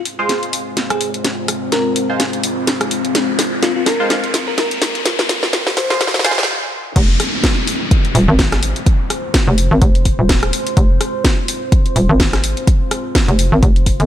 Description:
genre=bass house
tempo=126 BPM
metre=4/4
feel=swing 57% on 16ths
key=F minor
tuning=A4 = 439 Hz
part: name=deep dark ambient pad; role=sustained chords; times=0.5-14.1 s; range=Ab3 to C5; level=-23 LUFS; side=left 1 dB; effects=chorus, built-in reverb, sidechain pumping
part: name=riser and downlifter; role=sound effects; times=0.0-10.8 s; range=none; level=-25 LUFS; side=equal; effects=none
part: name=garage drum kit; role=drums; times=0.1-14.1 s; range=crash cymbal, hi-hat, rim click, snare drum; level=-18 LUFS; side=equal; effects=studio reverb
part: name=band-passed chord stab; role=stabs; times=0.2-6.3 s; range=Ab3 to C5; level=-23 LUFS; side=right 2 dB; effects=phaser, wide subtle chorus, cassette tape, sidechain pumping, dub echo
part: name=bell-like FM electric piano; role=melody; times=0.9-6.2 s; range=F4 to C5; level=-23 LUFS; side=left 1 dB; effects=chorus, dub echo
part: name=hollow knocking FM bass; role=bass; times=7.0-14.1 s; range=Eb1 to Ab1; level=-14 LUFS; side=equal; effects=tube saturation, sidechain pumping
part: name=electronic kick drum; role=drums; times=7.0-14.0 s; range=none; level=-14 LUFS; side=equal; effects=studio reverb
room=light reverb, digital ambience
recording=high-pass filter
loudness=-13 LUFS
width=side -11 dB against mid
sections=0.0-7.0 A section; 7.0-14.1 B section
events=build-up 0.0-7.0; drum fill 0.0-6.5; riser 0.0-6.5; stop 6.5-7.0; drop 7.0-14.1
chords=0.0 Fm

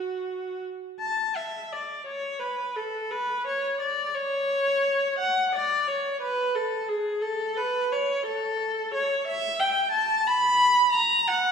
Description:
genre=classical, baroque-style suite movement for unaccompanied viola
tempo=58 BPM (dotted quarters)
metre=6/8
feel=uneven beats, rubato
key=F# minor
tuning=A4 = 440 Hz
part: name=rich viola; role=solo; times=0.0-11.5 s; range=F#4 to B5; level=-23 LUFS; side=equal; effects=none
room=wet scoring stage reverb, RT60 1.4 s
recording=recorded in a church or concert hall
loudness=-23 LUFS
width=side -6 dB against mid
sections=1.0-11.5 A section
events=none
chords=none

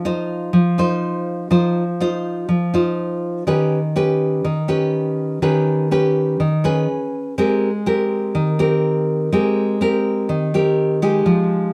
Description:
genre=bossa nova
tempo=123 BPM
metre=4/4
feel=straight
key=unclear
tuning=A4 = 440 Hz
part: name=nylon-string guitar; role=solo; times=0.0-11.7 s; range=Eb3 to C5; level=-19 LUFS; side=equal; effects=none
room=moderate studio reverb, RT60 0.8 s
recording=dark, warm production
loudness=-19 LUFS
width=mono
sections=0.0-11.7 A section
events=none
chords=0.0 Cmadd11/F; 3.5 Ebaug7; 6.9 Abmadd11/Db; 7.4 Abmaj9

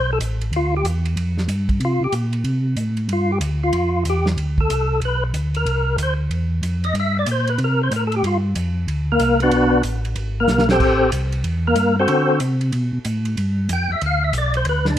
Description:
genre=soul jazz organ trio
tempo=187 BPM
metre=4/4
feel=swing 64% on 8ths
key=unclear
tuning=A4 = 441 Hz
part: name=percussive tonewheel organ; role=melody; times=0.0-15.0 s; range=Bb3 to G5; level=-19 LUFS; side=left 1 dB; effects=slow rotary speaker, overdrive, chorus vibrato, plate reverb
part: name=mellow tonewheel organ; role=bass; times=0.0-15.0 s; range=Ab1 to D3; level=-20 LUFS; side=equal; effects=chorus vibrato, slow rotary speaker
part: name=warm soul drum kit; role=drums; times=0.2-15.0 s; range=crash cymbal, hi-hat, kick drum, ride cymbal, snare drum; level=-28 LUFS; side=right 1 dB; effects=none
room=light reverb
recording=dark, warm production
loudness=-17 LUFS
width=side -11 dB against mid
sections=0.5-15.0 A section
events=tonewheel organ solo 0.5-15.0; drum fill 10.5-10.8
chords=0.0 N.C.; 0.5 G5; 1.8 Am; 3.1 G5; 4.4 D5; 5.0 Bmmaj7; 5.7 C7; 8.2 G7; 9.5 Bm7; 10.2 Abmaj9; 10.8 Am7; 12.1 D7; 13.4 G7

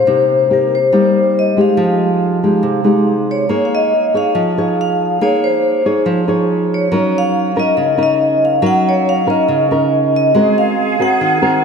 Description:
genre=bossa nova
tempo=140 BPM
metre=4/4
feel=straight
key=F minor, Bb minor from 3.5 s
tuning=A4 = 444 Hz
part: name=vibraphone with medium hard mallets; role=melody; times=0.0-11.6 s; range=Bb4 to Gb5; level=-15 LUFS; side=equal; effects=analog delay
part: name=nylon-string guitar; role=accompaniment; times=0.0-11.6 s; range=C3 to Db5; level=-15 LUFS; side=equal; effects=none
part: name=breathy bright flute section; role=second line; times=10.3-11.6 s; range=Ab4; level=-19 LUFS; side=right 2 dB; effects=none
room=wet lush hall reverb, RT60 2.8 s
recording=dreamy mix soaked in reverb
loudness=-12 LUFS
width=side -6 dB against mid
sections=0.0-3.5 A section; 3.5-11.6 B section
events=none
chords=0.1 Cm7; 1.8 Fm9; 3.5 Bbm11; 6.9 Gb6; 10.3 Ab9

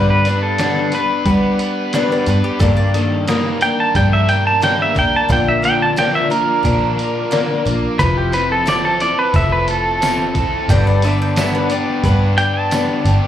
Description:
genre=folk rock and heartland rock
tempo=89 BPM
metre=4/4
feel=straight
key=unclear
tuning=A4 = 440 Hz
part: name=pedal steel guitar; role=melody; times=0.0-13.3 s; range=G4 to A5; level=-18 LUFS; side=right 1 dB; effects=slapback echo
part: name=picked steel-string acoustic guitar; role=accompaniment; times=0.0-13.3 s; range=G2 to B4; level=-21 LUFS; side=left 5 dB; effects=slapback echo
part: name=tonewheel organ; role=sustained chords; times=0.0-13.3 s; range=Bb3 to D5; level=-31 LUFS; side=right 1 dB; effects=none
part: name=biting overdriven guitar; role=riff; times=0.0-13.3 s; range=G2 to B4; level=-22 LUFS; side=right 2 dB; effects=slapback echo
part: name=vintage muted picked electric bass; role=bass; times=0.0-13.2 s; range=F1 to G3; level=-18 LUFS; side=equal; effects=none
part: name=trip hop sampler-style drum kit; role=drums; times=0.3-13.2 s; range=hi-hat, kick drum, snare drum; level=-23 LUFS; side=right 1 dB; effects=none
part: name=mandolin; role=second line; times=1.9-3.6, 10.7-12.4 s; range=Eb4 to G5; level=-25 LUFS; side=equal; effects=slapback echo
part: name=tambourine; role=percussion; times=8.7-12.9 s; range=none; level=-33 LUFS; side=right 3 dB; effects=none
room=light reverb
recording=live gig heard through the venue's PA, club reverb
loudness=-13 LUFS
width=side -10 dB against mid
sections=0.0-13.3 A section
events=pedal steel guitar solo 0.0-13.3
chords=0.0 G; 2.6 Ebmaj7/G; 5.3 Bb; 8.0 Fmaj7; 10.7 G

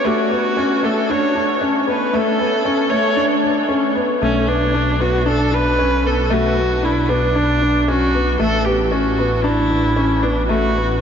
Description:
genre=piano and strings electronica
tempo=115 BPM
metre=4/4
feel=straight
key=B minor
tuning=A4 = 440 Hz
part: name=warm viola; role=melody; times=0.0-11.0 s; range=C#4 to C#5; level=-19 LUFS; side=right 1 dB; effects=ping-pong delay
part: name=dark upright piano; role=riff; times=0.1-11.0 s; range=A3 to D4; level=-18 LUFS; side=left 1 dB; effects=ping-pong delay
part: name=dark detuned saw bass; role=bass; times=4.2-11.0 s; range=A1 to B1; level=-21 LUFS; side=equal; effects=none
room=wet huge ambient reverb, RT60 7.7 s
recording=dreamy mix soaked in reverb, nothing above 7.5 kHz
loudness=-15 LUFS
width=side -7 dB against mid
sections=0.0-4.2 A section; 4.2-11.0 B section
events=build-up 0.0-4.2; drop 4.2-11.0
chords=0.0 Asus4; 4.2 Bm; 8.4 Asus4

